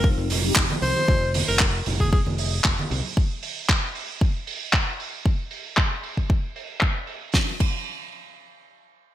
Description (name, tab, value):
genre	nu-disco, nu disco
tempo	115 BPM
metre	4/4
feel	straight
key	F minor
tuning	A4 = 441 Hz
part	bright tenor saxophone	melody	0.0-2.2 s	Ab4 to C5	-27 LUFS	left 1 dB	digital delay
part	mellow synth brass	accompaniment	0.0-1.1 s	F3 to G4	-31 LUFS	left 1 dB	chorus, phaser, sidechain pumping, ping-pong delay
part	fingered electric bass	bass	0.0-3.0 s	F1 to C2	-26 LUFS	equal	none
part	electronic kick drum	drums	0.0-7.8 s	none	-22 LUFS	equal	none
part	damped 70s drum kit	drums	0.3-7.8 s	crash cymbal, handclaps, hi-hat, snare drum	-25 LUFS	right 1 dB	low-pass filter on hats, low-pass filter on cymbals, low-pass filter on snare, low-pass filter on room, gated reverb
part	congas	percussion	0.3-3.0 s	none	-31 LUFS	right 2 dB	none
room	light reverb, studio ambience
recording	bright 1980s-style digital production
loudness	-21 LUFS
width	side -12 dB against mid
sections	0.0-7.3 A section; 7.3-9.1 B section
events	filter sweep on analog polysynth 0.0-1.1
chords	0.0 Fm9; 3.2 N.C.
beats	0.04 0.56 | 1.08 1.60 2.12 2.65 | 3.17 3.69 4.21 4.73 | 5.25 5.78 6.30 6.82 | 7.34